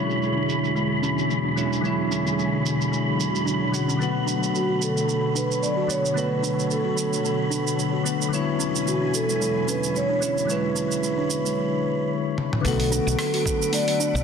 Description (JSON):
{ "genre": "sunset chillout", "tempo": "111 BPM", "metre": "4/4", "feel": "swing 56% on 16ths", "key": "B dorian", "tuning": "A4 = 443 Hz", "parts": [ { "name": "soft electric-piano-like synth keys", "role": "accompaniment", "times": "0.0-14.2 s", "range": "D3 to C#5", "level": "-27 LUFS", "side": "moving between left 7 dB and right 5 dB", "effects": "chorus, tremolo, auto-pan, digital delay" }, { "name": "soft string machine", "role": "sustained chords", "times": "0.0-14.2 s", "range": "E2 to B5", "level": "-28 LUFS", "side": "left 1 dB", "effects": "ensemble chorus" }, { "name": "buzzing kalimba", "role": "arpeggios", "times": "0.0-14.1 s", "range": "G#3 to F#4", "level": "-31 LUFS", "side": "right 2 dB", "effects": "low-pass filter, digital delay" }, { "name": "wind-like tuned noise texture", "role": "texture", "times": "0.0-14.2 s", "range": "B5 to D7", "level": "-32 LUFS", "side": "right 1 dB", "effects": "built-in reverb" }, { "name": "dusty soul sampler-style drum kit", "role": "drums", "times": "0.1-14.2 s", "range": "hi-hat, rim click, shaker, toms", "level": "-30 LUFS", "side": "right 4 dB", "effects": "low-pass filter on perc, low-pass filter on toms, low-pass filter on hats, soft clipping on snare, low-pass filter on snare, low-pass filter on room" }, { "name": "vibraphone with soft mallets", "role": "melody", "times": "4.6-14.2 s", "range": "F#4 to D5", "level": "-26 LUFS", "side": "right 2 dB", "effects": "digital delay" }, { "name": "woody fretless electric bass", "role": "bass", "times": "12.6-14.2 s", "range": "B1", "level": "-24 LUFS", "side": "equal", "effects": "none" }, { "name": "electronic kick drum", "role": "drums", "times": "12.6-13.6 s", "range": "none", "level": "-29 LUFS", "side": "equal", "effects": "none" } ], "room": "moderate plate reverb, RT60 2.3 s", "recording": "dense, heavily limited modern master", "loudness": "-21 LUFS", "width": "side -6 dB against mid", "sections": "0.0-12.6 A section; 12.6-14.2 B section", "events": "filter sweep on drum 0.0-12.6; filter sweep on string machine 0.0-12.6; filter sweep on kalimba 0.0-12.6; drum fill 12.4", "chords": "0.0 E13; 4.0 Bm7; 8.3 E13; 12.6 Bm7", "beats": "0.21 0.75 1.29 | 1.83 2.38 2.92 3.46 | 4.00 4.54 5.08 5.62 | 6.16 6.70 7.24 7.78 | 8.32 8.86 9.40 9.94 | 10.48 11.03 11.56 12.11 | 12.65 13.19 13.73" }